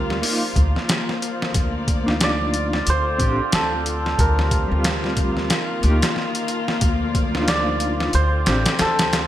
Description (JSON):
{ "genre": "trip hop", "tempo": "91 BPM", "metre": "4/4", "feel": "swing 59% on 16ths", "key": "unclear", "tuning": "A4 = 440 Hz", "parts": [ { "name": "santur", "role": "melody", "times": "0.0-9.3 s", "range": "A4 to D5", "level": "-25 LUFS", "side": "right 2 dB", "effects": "vintage 12-bit sampler grit, dub echo" }, { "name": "mellow electric guitar", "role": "accompaniment", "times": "0.0-8.7 s", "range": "G3 to G4", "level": "-27 LUFS", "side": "equal", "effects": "tremolo, tape echo" }, { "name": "dark studio string section", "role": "sustained chords", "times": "0.0-9.3 s", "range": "C3 to D5", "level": "-27 LUFS", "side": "left 2 dB", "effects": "none" }, { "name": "upright bass", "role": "bass", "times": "0.0-9.3 s", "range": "A1 to D2", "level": "-22 LUFS", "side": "equal", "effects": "none" }, { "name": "boom bap sampler-style drum kit", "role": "drums", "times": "0.1-9.3 s", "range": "hi-hat, kick drum, snare drum", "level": "-22 LUFS", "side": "equal", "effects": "studio reverb, gated reverb" } ], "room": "moderate lush hall reverb, RT60 2.0 s, small room ambience", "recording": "bright 1980s-style digital production", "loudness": "-18 LUFS", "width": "side -12 dB against mid", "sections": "0.0-9.3 A section", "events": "none", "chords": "0.2 Bbadd11/D; 2.9 Dm7; 4.2 Bb69/D; 5.5 F7sus4/D; 6.8 Bbadd11/D; 8.1 Dm7", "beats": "0.23 0.89 | 1.54 2.20 2.86 3.52 | 4.18 4.84 5.50 6.16 | 6.82 7.48 8.14 8.80" }